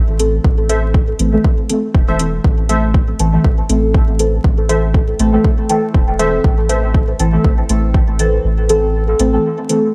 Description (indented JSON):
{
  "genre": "dub techno",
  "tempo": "120 BPM",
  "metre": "4/4",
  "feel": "swing 56% on 16ths",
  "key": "A minor",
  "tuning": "A4 = 435 Hz",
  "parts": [
    { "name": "soft dub sub bass", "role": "bass", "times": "0.0-9.4 s", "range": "E1 to A1", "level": "-20 LUFS", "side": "equal", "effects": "sidechain pumping" },
    { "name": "deep mellow chord stab", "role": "stabs", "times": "0.2-9.9 s", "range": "E3 to A4", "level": "-19 LUFS", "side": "equal", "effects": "chorus, phaser, dub echo" },
    { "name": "electronic hi-hat", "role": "drums", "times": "0.2-9.8 s", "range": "none", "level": "-25 LUFS", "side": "equal", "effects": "none" },
    { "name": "electronic kick drum", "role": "drums", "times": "0.4-8.1 s", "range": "none", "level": "-16 LUFS", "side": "equal", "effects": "none" },
    { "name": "wavetable chord stab", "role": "riff", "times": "0.7-6.8 s", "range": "A4 to E5", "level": "-27 LUFS", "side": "equal", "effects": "vintage 12-bit sampler grit, sidechain pumping, dub echo" }
  ],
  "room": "light reverb",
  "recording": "vinyl crackle",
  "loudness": "-14 LUFS",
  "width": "mono",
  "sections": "0.0-9.9 A section",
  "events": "kick drops out 8.4-9.9",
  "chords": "0.0 Am"
}